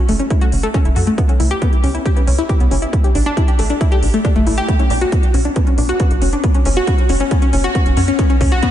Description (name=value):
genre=uplifting trance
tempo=137 BPM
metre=4/4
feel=straight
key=unclear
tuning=A4 = 438 Hz
part: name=analog pluck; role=arpeggios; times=0.0-8.7 s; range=A3 to G4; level=-18 LUFS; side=left 2 dB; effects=chorus, sidechain pumping, diffuse ambient delay
part: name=tight sequencer bass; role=bass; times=0.1-8.6 s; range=F#1 to F#2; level=-18 LUFS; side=equal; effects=sidechain pumping
part: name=electronic hi-hat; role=drums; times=0.1-8.7 s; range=none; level=-30 LUFS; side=right 2 dB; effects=none
part: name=electronic kick drum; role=drums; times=0.3-8.7 s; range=none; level=-15 LUFS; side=equal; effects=none
room=moderate plate reverb, RT60 2.2 s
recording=dreamy mix soaked in reverb, nothing above 10.3 kHz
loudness=-13 LUFS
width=side -11 dB against mid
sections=0.0-8.7 A section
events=build-up 0.0-8.7; drum fill 4.7-8.7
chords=0.0 F#m7; 1.2 C#m7b5; 2.9 A7sus4; 4.7 Bmadd9; 6.4 F#5; 8.2 Gmaj7(b5, no3) (rootless)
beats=0.30 0.74 | 1.18 1.62 2.06 2.50 | 2.93 3.37 3.81 4.25 | 4.68 5.12 5.56 6.00 | 6.44 6.88 7.31 7.75 | 8.19 8.63